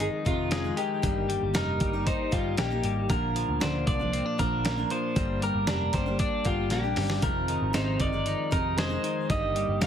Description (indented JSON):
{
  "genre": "jangly indie pop",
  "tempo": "116 BPM",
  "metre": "4/4",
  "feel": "straight",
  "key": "F dorian",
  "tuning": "A4 = 440 Hz",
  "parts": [
    { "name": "electric guitar through a small old amp", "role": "melody", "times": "0.0-9.9 s", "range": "F4 to F5", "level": "-31 LUFS", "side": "equal", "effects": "slapback echo" },
    { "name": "picked steel-string acoustic guitar", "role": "accompaniment", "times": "0.0-9.9 s", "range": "F2 to Eb4", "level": "-34 LUFS", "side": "right 6 dB", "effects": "none" },
    { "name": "twelve-string electric guitar", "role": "arpeggios", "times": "0.0-9.9 s", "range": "F2 to Eb4", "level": "-32 LUFS", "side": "left 5 dB", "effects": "slapback echo" },
    { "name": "vintage muted picked electric bass", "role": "bass", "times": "0.0-9.9 s", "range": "F1 to D2", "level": "-32 LUFS", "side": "equal", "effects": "none" },
    { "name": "dusty soul sampler-style drum kit", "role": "drums", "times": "0.0-9.9 s", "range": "hi-hat, kick drum, snare drum", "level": "-30 LUFS", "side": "equal", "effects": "none" }
  ],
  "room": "moderate club reverb, RT60 0.5 s",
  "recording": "heavily compressed radio sound, multiband compression",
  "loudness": "-25 LUFS",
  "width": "side -9 dB against mid",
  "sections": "0.0-9.9 A section",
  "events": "drum fill 6.7-7.2",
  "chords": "0.0 Fm7; 1.0 Eb; 3.1 Bb; 5.2 Gm; 7.2 Fm7; 9.3 Eb"
}